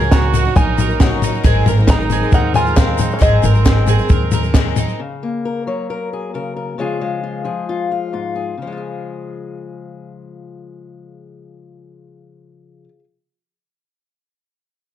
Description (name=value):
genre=indie folk with a building arrangement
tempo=134 BPM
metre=4/4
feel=straight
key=Db major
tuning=A4 = 441 Hz
part: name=picked twelve-string acoustic guitar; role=accompaniment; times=0.0-5.0 s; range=Ab2 to Bb4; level=-23 LUFS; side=left 8 dB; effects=none
part: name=clear brass ensemble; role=sustained chords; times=0.0-5.0 s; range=Bb2 to Bb4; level=-30 LUFS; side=left 1 dB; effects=none
part: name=mandolin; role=arpeggios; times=0.0-5.0 s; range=Eb4 to Bb4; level=-25 LUFS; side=right 7 dB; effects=none
part: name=upright bass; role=bass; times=0.0-4.8 s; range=Ab1 to Eb2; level=-17 LUFS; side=right 1 dB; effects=none
part: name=open-back banjo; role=melody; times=0.1-4.5 s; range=Eb5 to Bb5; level=-22 LUFS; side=left 2 dB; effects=none
part: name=clear trumpet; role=second line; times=0.1-4.5 s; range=C4 to Gb4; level=-23 LUFS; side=right 6 dB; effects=none
part: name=compact cocktail drum kit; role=drums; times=0.1-4.9 s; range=kick drum, snare drum, toms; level=-15 LUFS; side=equal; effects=none
part: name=group handclap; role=percussion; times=0.1-4.7 s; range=none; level=-31 LUFS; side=left 6 dB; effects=none
part: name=tube shaker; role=percussion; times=0.1-4.9 s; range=none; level=-35 LUFS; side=left 8 dB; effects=none
part: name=fingerpicked acoustic archtop guitar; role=accompaniment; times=5.0-13.0 s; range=Ab2 to Db5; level=-24 LUFS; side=left 5 dB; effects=none
room=moderate large studio reverb, RT60 0.9 s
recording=dark, warm production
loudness=-14 LUFS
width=side -11 dB against mid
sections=0.0-5.0 A section; 5.0-8.6 B section; 8.6-12.2 C section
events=none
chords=0.0 Ebm; 1.4 Abadd9; 5.0 Gb/Db; 6.8 Db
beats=0.12 0.56 1.01 | 1.45 1.89 2.33 2.78 | 3.22 3.66 4.11 4.55 | 4.99 5.44 5.88 6.33 | 6.78 7.22 7.67 8.12 | 8.57 9.02 9.46 9.91 | 10.36 10.81 11.26 11.71